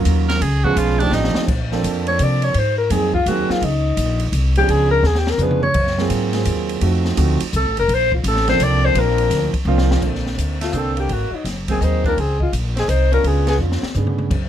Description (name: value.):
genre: jazz, small-group swing and bop.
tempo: 169 BPM.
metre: 3/4.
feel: swing 65% on 8ths.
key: unclear.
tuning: A4 = 441 Hz.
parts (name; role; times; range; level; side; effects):
warm concert grand piano; accompaniment; 0.0-14.3 s; D3 to A#4; -22 LUFS; right 5 dB; none.
upright bass; bass; 0.0-14.5 s; F1 to C3; -19 LUFS; equal; none.
open jazz drum kit; drums; 0.1-14.4 s; crash cymbal, hi-hat, kick drum, ride cymbal, snare drum, toms; -25 LUFS; equal; none.
clear tenor saxophone; second line; 0.3-1.4, 10.6-13.6 s; Gb3 to A#4; -26 LUFS; right 3 dB; none.
breathy alto saxophone; melody; 2.1-13.6 s; Eb4 to D5; -19 LUFS; left 3 dB; none.
room: little or no reverb.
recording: close, detailed microphones.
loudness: -16 LUFS.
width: side -10 dB against mid.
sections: 0.0-1.5 A section; 1.5-10.0 A section; 10.0-14.5 B section.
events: tenor saxophone solo 0.0-1.5; drum fill 1.1-1.5, 5.0-5.8, 9.7-10.0, 13.6-14.3; alto saxophone solo 1.5-10.0.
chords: 0.4 C#7; 1.1 F13; 1.5 Bbmaj9; 2.5 Ab9; 3.6 Dbmaj7sus2; 4.7 Db7b9; 5.8 Gbmaj9#11; 6.8 F7b9; 7.9 Bbmaj9; 11.1 Ab9; 12.2 Db5; 13.2 Db7b9.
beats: 0.06 | 0.41 0.77 1.12 | 1.48 1.83 2.19 | 2.55 2.90 3.26 | 3.62 3.97 4.33 | 4.68 5.04 5.39 | 5.75 6.11 6.46 | 6.82 7.17 7.53 | 7.89 8.24 8.60 | 8.95 9.31 9.67 | 10.02 10.38 10.73 | 11.09 11.45 11.81 | 12.16 12.52 12.88 | 13.23 13.59 13.95 | 14.30.